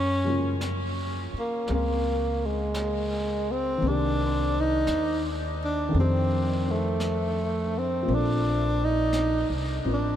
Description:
jazz ballad; 56 BPM; 4/4; swing 67% on 8ths; A4 = 440 Hz
breathy tenor saxophone; melody; 0.0-10.2 s; Ab3 to Eb4; -26 LUFS; equal; ping-pong delay
upright bass; bass; 0.0-10.2 s; A1 to Gb2; -28 LUFS; equal
warm upright piano; accompaniment; 0.2-10.2 s; Db3 to D5; -32 LUFS; left 2 dB; wide subtle chorus
jazz brush drum kit; drums; 0.6-10.2 s; brushed snare drum, hi-hat, snare drum; -41 LUFS; equal
moderate huge ambient reverb, RT60 7.8 s; dreamy mix soaked in reverb; -24 LUFS; side -10 dB against mid
0.0-10.2 A section
0.0 Gbmaj9; 3.8 Cm9; 5.9 F13; 8.1 Bbmaj9

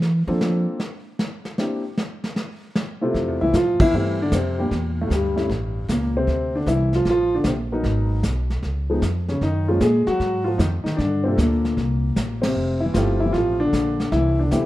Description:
jazz piano trio; 153 BPM; 4/4; swing 67% on 8ths; F major; A4 = 442 Hz
upright bass; bass; 0.0-0.6, 3.1-14.7 s; F1 to F3; -23 LUFS; equal
vintage brush drum kit; drums; 0.0-14.7 s; brushed snare drum, hi-hat, kick drum, ride cymbal, snare drum; -26 LUFS; equal
warm grand piano; melody; 0.3-14.7 s; G2 to E5; -21 LUFS; left 1 dB
light reverb, small room ambience; rough home demo mix; -19 LUFS; side -16 dB against mid
0.0-3.1 A section; 3.1-14.7 B section
upright bass solo 0.0-3.1; band accent 3.7, 12.4
0.0 Bbmaj9#11/E; 1.6 C; 4.7 Em7b5; 5.5 A7; 6.3 Dm7; 7.8 Abm7; 8.6 Db; 9.4 Gbmaj9; 11.0 Gm7; 11.8 Bbsus2; 12.6 Fmaj9

